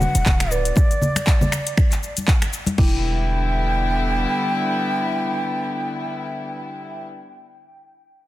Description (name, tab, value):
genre	afro house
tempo	119 BPM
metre	4/4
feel	swing 57% on 16ths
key	E minor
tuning	A4 = 440 Hz
part	breathy bansuri	melody	0.0-7.0 s	D5 to G5	-26 LUFS	equal	dub echo
part	clear studio string section	sustained chords	0.0-7.0 s	D3 to F#4	-26 LUFS	left 1 dB	sidechain pumping
part	warm 808-style bass	bass	0.0-4.3 s	D1 to E1	-22 LUFS	equal	sidechain pumping
part	afro-pop drum kit	drums	0.0-2.9 s	crash cymbal, finger snaps, handclaps, hi-hat, shaker	-26 LUFS	left 1 dB	studio reverb
part	congas	percussion	0.0-2.8 s	none	-24 LUFS	left 1 dB	none
part	electronic kick drum	drums	0.3-2.9 s	none	-17 LUFS	equal	overdrive, studio reverb
part	folk marimba with soft mallets	arpeggios	0.5-3.0 s	E4 to B4	-30 LUFS	right 2 dB	sidechain pumping, dub echo
room	light reverb, studio ambience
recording	dense, heavily limited modern master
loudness	-18 LUFS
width	side -15 dB against mid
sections	0.0-2.8 A section; 2.8-6.8 B section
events	drop 0.0-2.8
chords	0.0 Bm; 2.8 Em7